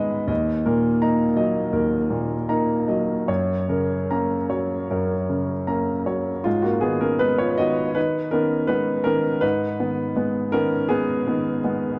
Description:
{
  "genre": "neoclassical minimalist piano",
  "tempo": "73-84 BPM",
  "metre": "4/4",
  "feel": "rubato",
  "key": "unclear",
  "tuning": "A4 = 440 Hz",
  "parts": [
    { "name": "warm grand piano", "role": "solo", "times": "0.0-12.0 s", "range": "Eb2 to Cb6", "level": "-22 LUFS", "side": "equal", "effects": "tape echo" }
  ],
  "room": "wet studio reverb, RT60 0.6 s",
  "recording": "none",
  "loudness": "-23 LUFS",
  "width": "mono",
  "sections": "0.0-6.5 A section; 6.5-12.0 B section",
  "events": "none",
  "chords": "0.3 Ebm; 3.3 Gb; 6.5 Abm",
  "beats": "| 0.30 1.02 1.74 2.49 | 3.28 4.10 4.90 5.68 | 6.45 7.21 7.95 8.69 | 9.42 10.16 10.90 11.63"
}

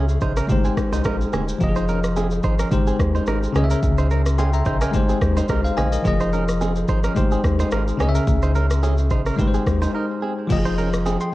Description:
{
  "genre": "afrobeats",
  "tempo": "108 BPM",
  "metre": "4/4",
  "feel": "swing 55% on 16ths",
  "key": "Ab major",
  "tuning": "A4 = 438 Hz",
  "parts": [
    { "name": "bell-like tine electric piano", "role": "accompaniment", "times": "0.0-11.3 s", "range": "Db3 to C6", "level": "-22 LUFS", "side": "left 2 dB", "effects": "fast stereo tremolo" },
    { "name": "direct-recorded clean electric guitar", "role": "riff", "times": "0.0-11.2 s", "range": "C4 to C5", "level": "-28 LUFS", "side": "right 5 dB", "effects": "spring reverb, digital delay" },
    { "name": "saturated sub bass", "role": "bass", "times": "0.0-11.2 s", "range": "Eb1 to Eb2", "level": "-22 LUFS", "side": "equal", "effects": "none" },
    { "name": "afro-pop drum kit", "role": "drums", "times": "0.1-11.3 s", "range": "crash cymbal, kick drum, rim click, shaker", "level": "-24 LUFS", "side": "equal", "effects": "overdrive" },
    { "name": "congas and bongos", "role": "percussion", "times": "0.5-11.2 s", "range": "none", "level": "-30 LUFS", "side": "right 2 dB", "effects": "none" }
  ],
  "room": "little or no reverb",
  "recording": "worn, warbling old tape, cassette tape, warbly pitch drift",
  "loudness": "-18 LUFS",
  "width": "side -17 dB against mid",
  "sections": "0.0-10.5 A section",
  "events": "break 9.9-10.5",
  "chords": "0.5 Abmaj7; 1.6 Fm7; 2.7 Abmaj7; 3.6 Dbm; 4.9 Abmaj7; 6.1 Fm7; 7.2 Abmaj7; 8.0 Dbm; 9.4 Abmaj7; 10.5 Fm7",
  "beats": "0.50 1.05 | 1.61 2.16 2.72 3.27 | 3.83 4.39 4.94 5.50 | 6.05 6.61 7.16 7.72 | 8.28 8.83 9.39 9.94 | 10.50 11.05"
}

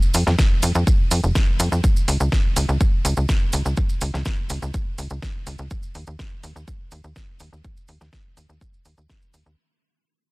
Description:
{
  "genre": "progressive house",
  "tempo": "124 BPM",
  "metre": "4/4",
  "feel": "straight",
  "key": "unclear",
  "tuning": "A4 = 441 Hz",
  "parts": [
    { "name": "maracas", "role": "percussion", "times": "0.0-9.6 s", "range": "none", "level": "-32 LUFS", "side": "right 3 dB", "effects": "none" },
    { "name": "tight sequencer bass", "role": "bass", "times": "0.1-9.6 s", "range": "F1 to F2", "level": "-21 LUFS", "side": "equal", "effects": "sidechain pumping" },
    { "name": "pop drum kit", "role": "drums", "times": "0.1-9.4 s", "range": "hi-hat, snare drum", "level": "-29 LUFS", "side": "equal", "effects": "small room ambience" },
    { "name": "electronic kick drum", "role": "drums", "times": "0.4-9.2 s", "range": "none", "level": "-20 LUFS", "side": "equal", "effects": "small room ambience" }
  ],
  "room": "digital ambience",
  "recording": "dense, heavily limited modern master",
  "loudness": "-18 LUFS",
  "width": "side -25 dB against mid",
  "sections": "0.0-9.6 A section",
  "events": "fade-out 0.0-9.6",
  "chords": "none",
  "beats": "0.39 0.87 1.35 | 1.84 2.32 2.81 3.29 | 3.77 4.26 4.74 5.22 | 5.71 6.19 6.68 7.16 | 7.64 8.13 8.61 9.10"
}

